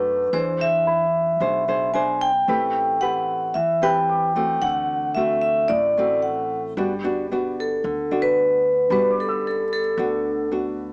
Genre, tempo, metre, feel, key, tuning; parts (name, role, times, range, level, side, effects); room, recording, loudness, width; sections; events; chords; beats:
bossa nova; 112 BPM; 4/4; straight; G major; A4 = 444 Hz
vibraphone with medium mallets; melody; 0.0-10.5 s; A4 to G#5; -20 LUFS; equal
nylon-string guitar; accompaniment; 0.0-10.9 s; A2 to C5; -25 LUFS; equal
warm concert grand piano; accompaniment; 0.0-4.7, 8.9-10.9 s; A5 to E6; -32 LUFS; equal
upright bass; bass; 0.0-10.9 s; G1 to F#2; -36 LUFS; equal
light reverb; small speaker sound; -19 LUFS; side -38 dB against mid
0.0-10.9 A section
0.3 E7b13; 2.5 Am9; 4.6 D7; 6.8 Gmaj7
| 0.33 0.87 1.41 1.94 | 2.48 3.01 3.55 4.08 | 4.62 5.15 5.69 6.23 | 6.76 7.30 7.83 8.37 | 8.91 9.44 9.98 10.52